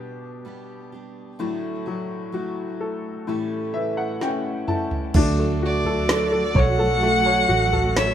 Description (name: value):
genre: pop ballad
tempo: 64 BPM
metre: 4/4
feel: straight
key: D major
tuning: A4 = 440 Hz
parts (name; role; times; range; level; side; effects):
- bright upright piano; accompaniment; 0.0-8.1 s; A2 to A5; -26 LUFS; left 4 dB; none
- picked steel-string acoustic guitar; arpeggios; 0.0-8.1 s; A2 to A4; -30 LUFS; right 5 dB; ping-pong delay
- smooth R&B drum kit; drums; 4.2-8.1 s; crash cymbal, kick drum, snare drum, toms; -23 LUFS; right 1 dB; none
- vintage muted fingered electric bass; bass; 5.1-8.1 s; A1 to D2; -25 LUFS; right 1 dB; none
- warm studio string section; sustained chords; 5.2-8.1 s; F#3 to F#4; -28 LUFS; right 1 dB; stereo widening
- rich violin; melody; 5.7-8.1 s; D5 to F#5; -22 LUFS; right 1 dB; none
room: little or no reverb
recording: rough home demo mix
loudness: -20 LUFS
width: side -10 dB against mid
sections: 0.0-5.1 A section; 5.1-8.1 B section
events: upright piano fill 3.3-5.1; drum fill 4.2-5.1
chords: 0.0 G/B; 1.4 D/A; 3.3 A7; 5.1 Dmaj7